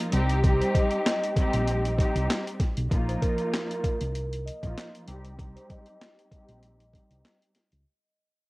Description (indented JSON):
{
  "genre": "hip hop, boom-bap hip-hop",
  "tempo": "97 BPM",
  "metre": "4/4",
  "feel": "swing 55% on 16ths",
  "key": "C minor",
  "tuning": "A4 = 440 Hz",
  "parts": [
    { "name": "warm studio string section", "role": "accompaniment", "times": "0.0-7.5 s", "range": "F3 to G4", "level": "-30 LUFS", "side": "equal", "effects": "cassette tape, high-pass filter, low-pass filter" },
    { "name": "boom bap sampler-style drum kit", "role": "drums", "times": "0.0-7.8 s", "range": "handclaps, hi-hat, kick drum, snare drum", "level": "-27 LUFS", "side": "equal", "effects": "cassette tape" },
    { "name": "hollow-body short-scale fingered electric bass", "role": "bass", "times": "0.1-7.8 s", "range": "Bb1 to Db2", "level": "-28 LUFS", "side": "equal", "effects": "none" },
    { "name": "vibraphone with soft mallets", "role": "melody", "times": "0.6-7.4 s", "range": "Bb4 to Eb5", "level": "-33 LUFS", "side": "equal", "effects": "high-pass filter, low-pass filter, cassette tape, tape echo" }
  ],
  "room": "light reverb, studio ambience",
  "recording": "home recording on cassette",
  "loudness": "-24 LUFS",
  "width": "side -22 dB against mid",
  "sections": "0.0-7.9 A section",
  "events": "fade-out 0.0-7.9; filter sweep 0.0-7.9",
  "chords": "0.1 Cm; 2.9 Bbsus4; 5.1 Cm"
}